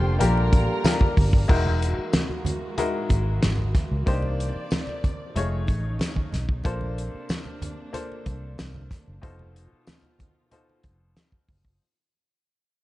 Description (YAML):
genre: lush 1970s-style soul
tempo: 93 BPM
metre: 4/4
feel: straight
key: unclear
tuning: A4 = 440 Hz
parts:
  - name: warm studio violin section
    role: melody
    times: 0.0-0.8 s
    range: G5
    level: -39 LUFS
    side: left 1 dB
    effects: none
  - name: warm studio string section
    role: second line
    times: 0.0-1.5 s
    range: Bb4 to C6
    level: -33 LUFS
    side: right 2 dB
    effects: none
  - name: clear grand piano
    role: accompaniment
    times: 0.0-11.8 s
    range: B2 to C#5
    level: -30 LUFS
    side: left 3 dB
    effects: none
  - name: warm studio string section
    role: sustained chords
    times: 0.0-11.8 s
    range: B2 to D5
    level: -36 LUFS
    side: equal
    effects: none
  - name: warm horn section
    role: stabs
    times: 0.0-1.1 s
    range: D3 to F4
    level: -35 LUFS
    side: right 3 dB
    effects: tape echo
  - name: vintage muted fingered electric bass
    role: bass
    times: 0.0-11.8 s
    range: E1 to C#2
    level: -25 LUFS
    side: equal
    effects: none
  - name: warm soul drum kit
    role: drums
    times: 0.2-11.8 s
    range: crash cymbal, hi-hat, kick drum, snare drum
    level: -23 LUFS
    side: equal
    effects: none
  - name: congas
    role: percussion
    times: 0.2-11.6 s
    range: none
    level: -33 LUFS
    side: right 2 dB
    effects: none
  - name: tambourine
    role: percussion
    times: 0.8-11.3 s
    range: none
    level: -45 LUFS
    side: left 6 dB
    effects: none
room: light reverb, small room ambience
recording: dark, warm production, nothing above 10.3 kHz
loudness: -22 LUFS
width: side -17 dB against mid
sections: 0.0-1.5 A section; 1.5-11.8 B section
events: fade-out 1.5-11.8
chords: 0.0 Gm9; 1.5 Emaj9#11; 4.1 Cm9; 5.4 F7alt; 6.6 Bbmaj9; 9.2 F7#11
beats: 0.20 0.85 | 1.49 2.13 2.78 3.42 | 4.07 4.71 5.36 6.00 | 6.65 7.29 7.94 8.58 | 9.23 9.88 10.52 11.17